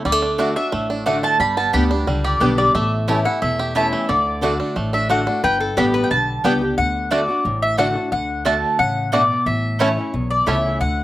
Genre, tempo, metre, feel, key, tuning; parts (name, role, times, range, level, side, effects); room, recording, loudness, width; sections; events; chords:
bluegrass; 179 BPM; 4/4; straight; D major; A4 = 436 Hz
picked acoustic archtop guitar; accompaniment; 0.0-11.0 s; E2 to G4; -23 LUFS; left 1 dB
bluegrass banjo; arpeggios; 0.0-10.6 s; D3 to G4; -24 LUFS; right 3 dB; slapback echo
mandolin; melody; 0.1-11.0 s; C#5 to B5; -20 LUFS; equal
upright bass; bass; 0.1-11.0 s; E1 to D2; -24 LUFS; equal
mandolin; stabs; 0.4-10.6 s; A3 to A5; -23 LUFS; right 2 dB; slapback echo
lap resonator guitar; second line; 5.4-6.2 s; G4 to B4; -24 LUFS; left 3 dB; slapback echo
little or no reverb; recorded outdoors, with no room sound; -16 LUFS; side -15 dB against mid
0.0-5.4 A section; 5.4-11.0 B section
0.1 D; 1.4 G; 2.7 A; 4.1 D; 5.4 G; 6.8 D; 9.5 A